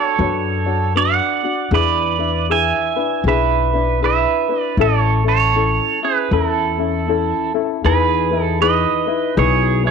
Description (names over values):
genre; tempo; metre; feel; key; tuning
Hawaiian; 78 BPM; 4/4; swing 61% on 8ths; A major; A4 = 440 Hz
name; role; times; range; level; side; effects
pedal steel guitar; melody; 0.0-9.9 s; E4 to G#5; -18 LUFS; right 8 dB; none
ukulele; accompaniment; 0.0-9.9 s; C#4 to C#5; -21 LUFS; left 13 dB; none
upright bass; bass; 0.2-9.9 s; A1 to F#2; -20 LUFS; left 1 dB; none
room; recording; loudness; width
moderate echo chamber reverb, RT60 1.5 s, small room ambience; 1960s-style stereo with parts hard left and right; -15 LUFS; side -6 dB against mid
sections
0.0-7.8 A section; 7.8-9.9 B section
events
none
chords
0.0 Bmadd9; 1.7 E7; 4.8 A; 7.8 Emaj7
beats
0.19 0.95 | 1.72 2.48 3.25 4.01 | 4.78 5.55 6.31 7.08 | 7.84 8.61 9.38